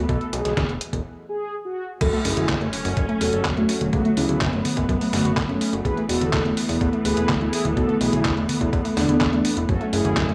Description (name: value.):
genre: italo disco.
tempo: 125 BPM.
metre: 4/4.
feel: straight.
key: F# minor.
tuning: A4 = 440 Hz.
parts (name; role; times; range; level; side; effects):
muted studio string section; sustained chords; 0.0-10.3 s; E3 to C#4; -30 LUFS; equal; none.
fat analog bass; bass; 0.0-10.3 s; D1 to C#2; -29 LUFS; equal; tape echo.
mellow synth brass; melody; 0.1-10.3 s; A3 to B4; -28 LUFS; equal; chorus, cassette tape, tape echo.
detuned 8-bit digital drum machine; drums; 0.1-10.3 s; congas, crash cymbal, handclaps, hi-hat, snare drum; -28 LUFS; equal; none.
electronic kick drum; drums; 0.1-10.3 s; none; -29 LUFS; equal; none.
warbly dusty pluck; arpeggios; 2.0-10.3 s; E3 to F#4; -30 LUFS; equal; chorus, tape echo.
sub drop; sound effects; 2.1-3.9 s; none; -38 LUFS; equal; none.
room: light reverb.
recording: small room ambience.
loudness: -22 LUFS.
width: mono.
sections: 0.0-2.0 A section; 2.0-10.3 B section.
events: break 1.0-2.0; impact 2.0-3.9.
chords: 0.0 Esus4; 2.0 F#m; 5.8 Esus4; 9.7 F#m.